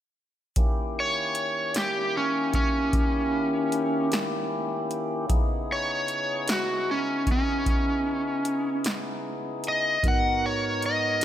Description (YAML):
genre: slow blues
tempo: 51 BPM (dotted quarters)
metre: 12/8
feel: straight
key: unclear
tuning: A4 = 442 Hz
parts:
  - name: tonewheel organ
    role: sustained chords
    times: 0.6-11.2 s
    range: G#2 to A#4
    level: -31 LUFS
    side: left 1 dB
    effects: slow rotary speaker, overdrive
  - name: electro analog drum machine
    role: drums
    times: 0.6-11.2 s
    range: hi-hat, kick drum, snare drum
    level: -27 LUFS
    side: equal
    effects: none
  - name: overdriven slide guitar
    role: melody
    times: 1.0-11.2 s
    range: C#4 to F#5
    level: -25 LUFS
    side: equal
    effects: slapback echo
  - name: mellow tine electric piano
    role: accompaniment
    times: 10.0-11.2 s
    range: G#2 to A#4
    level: -30 LUFS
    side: right 4 dB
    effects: wide subtle chorus
room: moderate concert hall reverb, RT60 2.2 s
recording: big arena sound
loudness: -24 LUFS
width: side -11 dB against mid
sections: 0.6-11.2 A section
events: none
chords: 0.6 D#7b9; 5.3 C#m9; 10.0 G#m9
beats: | 0.57 1.75 2.94 4.12 | 5.30 6.49 7.67 8.85 | 10.04 11.22